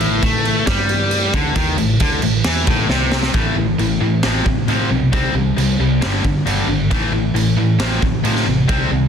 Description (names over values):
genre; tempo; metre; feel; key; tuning
hard rock; 134 BPM; 4/4; straight; A minor; A4 = 440 Hz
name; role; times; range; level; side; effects
tonewheel organ; sustained chords; 0.0-3.3 s; A3 to B4; -31 LUFS; equal; none
distorted electric guitar; riff; 0.0-9.1 s; F2 to C4; -20 LUFS; left 11 dB; overdrive
tight distorted guitar; riff; 0.0-9.1 s; F2 to C4; -21 LUFS; right 11 dB; distortion
fingered electric bass; bass; 0.0-9.1 s; G1 to A2; -20 LUFS; equal; none
raw garage drum kit; drums; 0.0-8.8 s; crash cymbal, kick drum, snare drum; -20 LUFS; equal; none
room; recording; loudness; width
small room ambience; dense, heavily limited modern master; -14 LUFS; side -7 dB against mid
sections
0.0-3.3 A section; 3.3-9.1 B section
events
drum fill 2.9-3.3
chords
0.0 Am; 3.3 A5; 4.2 F/A; 5.1 C5; 6.0 G5; 6.9 A5; 7.8 F/A